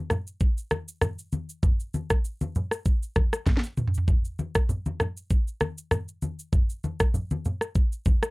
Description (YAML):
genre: afrobeats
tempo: 98 BPM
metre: 4/4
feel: swing 55% on 16ths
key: none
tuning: none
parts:
  - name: afro-pop drum kit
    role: drums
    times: 0.1-8.3 s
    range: kick drum, rim click, shaker, snare drum, toms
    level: -23 LUFS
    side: equal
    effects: none
  - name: congas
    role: percussion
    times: 0.1-8.2 s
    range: none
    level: -29 LUFS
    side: equal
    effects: none
room: little or no reverb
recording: dark, warm production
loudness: -24 LUFS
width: side -25 dB against mid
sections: 0.0-4.1 A section; 4.1-8.3 B section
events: drum fill 3.5-4.1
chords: none